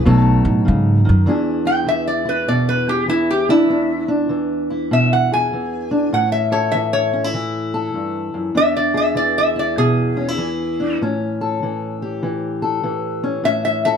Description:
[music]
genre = acoustic country blues, solo or duo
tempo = 98 BPM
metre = 4/4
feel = swing 65% on 8ths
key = E mixolydian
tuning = A4 = 440 Hz
[part]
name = metal-body resonator slide guitar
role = melody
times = 0.0-14.0 s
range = E4 to G#5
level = -18 LUFS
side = equal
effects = none
[part]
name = fingerpicked steel-string acoustic guitar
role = accompaniment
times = 0.0-14.0 s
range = E2 to A4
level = -19 LUFS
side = equal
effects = none
[part]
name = upright bass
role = bass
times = 0.1-1.3 s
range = B1 to A2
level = -15 LUFS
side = equal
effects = none
[sound]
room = moderate studio reverb, RT60 0.8 s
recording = dark, warm production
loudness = -16 LUFS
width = side -7 dB against mid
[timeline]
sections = 0.0-1.3 A section; 1.3-14.0 B section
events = none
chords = 0.0 B7; 1.3 E7; 6.1 A7; 8.6 E7; 11.0 A7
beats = 0.04 0.65 | 1.26 1.87 2.48 3.09 | 3.70 4.31 4.92 5.53 | 6.14 6.75 7.36 7.97 | 8.58 9.19 9.80 10.41 | 11.02 11.63 12.24 12.85 | 13.46

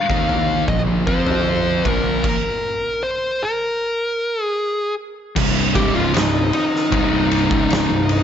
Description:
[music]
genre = stoner and doom metal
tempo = 77 BPM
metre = 4/4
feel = straight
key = C minor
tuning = A4 = 439 Hz
[part]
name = fuzz lead guitar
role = melody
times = 0.0-8.2 s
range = Eb4 to F5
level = -20 LUFS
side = left 1 dB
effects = distortion
[part]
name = thick fuzz guitar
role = riff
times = 0.1-8.2 s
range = C2 to F4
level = -23 LUFS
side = left 9 dB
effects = distortion
[part]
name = thick fuzz guitar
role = riff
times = 0.1-8.2 s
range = C2 to F4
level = -23 LUFS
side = right 11 dB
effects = distortion
[part]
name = fuzz picked electric bass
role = bass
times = 0.1-8.2 s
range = C1 to F2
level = -24 LUFS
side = equal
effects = overdrive
[part]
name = oversized low-tuned drum kit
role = drums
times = 0.1-8.2 s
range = crash cymbal, kick drum, ride cymbal, snare drum, toms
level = -22 LUFS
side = equal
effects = none
[sound]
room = light reverb, small room reverb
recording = nothing above 7.7 kHz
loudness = -16 LUFS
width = side -9 dB against mid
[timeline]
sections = 0.0-5.4 A section; 5.4-8.2 B section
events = stop 2.2-5.4; lead electric guitar solo 5.4-8.2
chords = 0.0 Bb5; 1.1 F5; 1.8 Bb5; 5.4 Cm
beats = 0.68 1.46 | 2.24 3.02 3.80 4.58 | 5.36 6.14 6.92 7.70

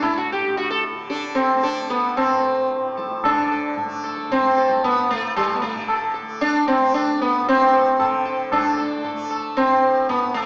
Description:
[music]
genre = indian classical, Hindustani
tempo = 113 BPM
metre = 5/4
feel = straight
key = unclear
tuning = A4 = 440 Hz
[part]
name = sitar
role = melody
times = 0.0-10.5 s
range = G3 to A4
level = -21 LUFS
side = equal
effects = none
[part]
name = tanpura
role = drone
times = 0.0-10.5 s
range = A2 to A3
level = -34 LUFS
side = equal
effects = none
[part]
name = tabla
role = percussion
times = 0.0-10.5 s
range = none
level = -29 LUFS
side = equal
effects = none
[sound]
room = wet concert hall reverb, RT60 1.9 s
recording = small speaker sound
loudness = -20 LUFS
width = mono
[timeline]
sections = 0.0-3.2 A section; 3.2-10.5 B section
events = speeding up 0.0-10.5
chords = none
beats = 0.02 | 0.56 1.10 1.63 2.17 2.70 | 3.24 3.77 4.30 4.83 5.36 | 5.89 6.42 6.95 7.47 8.00 | 8.53 9.05 9.57 10.10

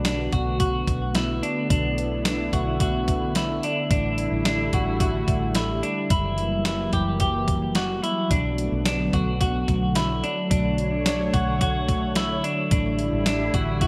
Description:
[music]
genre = dream pop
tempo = 109 BPM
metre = 4/4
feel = straight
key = B minor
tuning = A4 = 442 Hz
[part]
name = lush unison pad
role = sustained chords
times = 0.0-13.9 s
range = D3 to C#5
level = -30 LUFS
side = equal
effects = chorus
[part]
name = clean electric guitar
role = arpeggios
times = 0.0-13.9 s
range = D4 to G4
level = -29 LUFS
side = equal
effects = lush chorus, delay
[part]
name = vintage muted fingered electric bass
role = bass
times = 0.0-13.9 s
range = F#1 to B1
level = -31 LUFS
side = equal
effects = none
[part]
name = crisp 8-bit digital drum machine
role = drums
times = 0.0-13.9 s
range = hi-hat, kick drum, snare drum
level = -28 LUFS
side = equal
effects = overdrive
[sound]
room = moderate lush hall reverb, RT60 2.3 s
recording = bright 1980s-style digital production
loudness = -24 LUFS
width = mono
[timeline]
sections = 0.0-13.9 A section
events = none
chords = 0.0 Bm7; 3.9 A7sus4; 6.1 F#7b9; 8.3 Bm7; 12.7 A7sus4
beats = 0.05 0.60 1.15 | 1.70 2.25 2.81 3.36 | 3.91 4.46 5.01 5.56 | 6.11 6.66 7.21 7.76 | 8.31 8.86 9.41 9.96 | 10.51 11.06 11.61 12.16 | 12.71 13.26 13.81

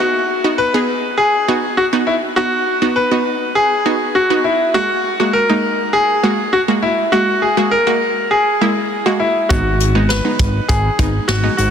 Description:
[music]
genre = synth-pop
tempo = 101 BPM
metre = 4/4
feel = straight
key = B major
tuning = A4 = 440 Hz
[part]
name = bright concert grand piano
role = melody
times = 0.0-11.7 s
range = E4 to B4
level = -15 LUFS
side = left 1 dB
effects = shimmer reverb, tape echo
[part]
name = wide unison pluck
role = accompaniment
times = 0.0-11.7 s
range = G#3 to G#4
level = -18 LUFS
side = right 1 dB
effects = shimmer reverb
[part]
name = chorused synth bass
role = bass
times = 9.5-11.7 s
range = G#1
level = -17 LUFS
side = equal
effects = none
[part]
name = jazz brush drum kit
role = drums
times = 9.5-11.7 s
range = hi-hat, kick drum, snare drum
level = -19 LUFS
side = equal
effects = soft clipping on snare
[sound]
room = moderate lush hall reverb, RT60 2.3 s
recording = dense, heavily limited modern master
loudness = -13 LUFS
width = side -8 dB against mid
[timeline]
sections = 0.0-11.7 A section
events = none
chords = 0.0 B; 4.8 F#add9; 9.5 G#m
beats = | 0.00 0.59 1.19 1.78 | 2.38 2.97 3.56 4.16 | 4.75 5.35 5.94 6.53 | 7.13 7.72 8.32 8.91 | 9.50 10.10 10.69 11.29

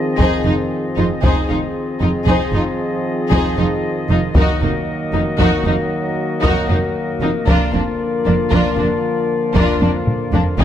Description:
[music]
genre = cinematic, epic orchestral film score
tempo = 77 BPM (dotted quarters)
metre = 12/8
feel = straight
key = unclear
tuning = A4 = 440 Hz
[part]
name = bright trombone section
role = sustained chords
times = 0.0-10.6 s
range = D3 to Gb3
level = -25 LUFS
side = right 3 dB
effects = none
[part]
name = clear woodwind section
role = sustained chords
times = 0.0-10.6 s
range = Bb3 to Eb5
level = -26 LUFS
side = left 1 dB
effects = none
[part]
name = warm French horn section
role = sustained chords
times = 0.0-10.6 s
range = Bb3 to Bb4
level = -23 LUFS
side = left 5 dB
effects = none
[part]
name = warm symphonic violin section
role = melody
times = 0.2-10.6 s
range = D4 to C5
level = -26 LUFS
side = left 4 dB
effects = none
[part]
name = clear symphonic violin section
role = second line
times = 0.2-10.6 s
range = Bb3 to Ab4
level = -25 LUFS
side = left 3 dB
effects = none
[part]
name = rich symphonic viola section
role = accompaniment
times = 0.2-10.6 s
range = D4 to Eb4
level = -25 LUFS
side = equal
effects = none
[part]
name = clear symphonic cello section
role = bass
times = 0.2-10.6 s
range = F2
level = -22 LUFS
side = right 2 dB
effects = none
[part]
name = clear symphonic double bass section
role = bass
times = 0.2-10.6 s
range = F1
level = -21 LUFS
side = right 2 dB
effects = none
[part]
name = solo taiko drums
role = drums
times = 0.2-10.6 s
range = none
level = -19 LUFS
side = equal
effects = none
[sound]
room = light reverb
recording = close, detailed microphones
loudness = -15 LUFS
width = side -10 dB against mid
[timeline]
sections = 0.0-10.6 A section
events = drum fill 9.8-10.6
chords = 0.0 Fm7; 4.4 Ebm/F; 7.5 Bb/F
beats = 0.45 | 1.23 2.01 2.79 3.57 | 4.35 5.13 5.91 6.70 | 7.47 8.26 9.04 9.82 | 10.60

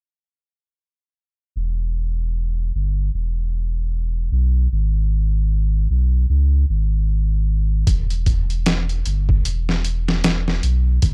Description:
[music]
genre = trip hop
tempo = 76 BPM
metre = 4/4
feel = swing 59% on 16ths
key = unclear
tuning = A4 = 440 Hz
[part]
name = warm sub bass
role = bass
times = 1.6-11.1 s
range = E1 to C#2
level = -21 LUFS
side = equal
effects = none
[part]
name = trip hop sampler-style drum kit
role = drums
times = 7.9-11.1 s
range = hi-hat, kick drum, snare drum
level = -22 LUFS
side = equal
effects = small room ambience
[sound]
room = little or no reverb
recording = dry, gritty hardware recording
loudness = -20 LUFS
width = mono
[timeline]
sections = 1.6-11.1 A section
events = none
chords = none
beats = | 1.56 2.35 3.13 3.92 | 4.71 5.50 6.29 7.08 | 7.87 8.66 9.45 10.24 | 11.03

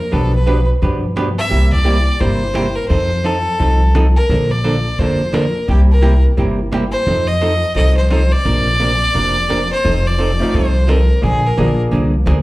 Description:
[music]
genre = country, western swing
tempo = 173 BPM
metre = 4/4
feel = swing 62% on 8ths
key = Bb major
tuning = A4 = 443 Hz
[part]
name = clear fiddle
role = melody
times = 0.0-11.8 s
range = G4 to E5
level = -19 LUFS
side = equal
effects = slapback echo
[part]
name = archtop guitar, miked and amplified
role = accompaniment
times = 0.1-12.4 s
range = B2 to B4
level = -19 LUFS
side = right 2 dB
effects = slapback echo
[part]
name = upright bass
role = bass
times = 0.1-12.4 s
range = F1 to G2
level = -15 LUFS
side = equal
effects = none
[part]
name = cajon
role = drums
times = 0.1-12.4 s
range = none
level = -25 LUFS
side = equal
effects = none
[part]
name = clear upright piano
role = accompaniment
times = 10.4-12.1 s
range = A3 to Ab4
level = -22 LUFS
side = left 1 dB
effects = none
[sound]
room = studio reverb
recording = live gig heard through the venue's PA, club reverb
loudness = -12 LUFS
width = side -19 dB against mid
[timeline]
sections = 0.0-12.4 A section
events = none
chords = 0.1 G7/B; 1.5 C7; 2.9 F7; 4.3 Bbmaj7; 5.7 C7; 7.1 F7; 8.5 Bbadd9; 9.8 F7; 11.2 Bb7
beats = | 0.13 0.48 0.82 1.17 | 1.52 1.86 2.21 2.56 | 2.90 3.25 3.60 3.94 | 4.29 4.64 4.99 5.33 | 5.68 6.03 6.37 6.72 | 7.07 7.42 7.76 8.11 | 8.46 8.80 9.15 9.50 | 9.85 10.19 10.54 10.88 | 11.23 11.58 11.93 12.27

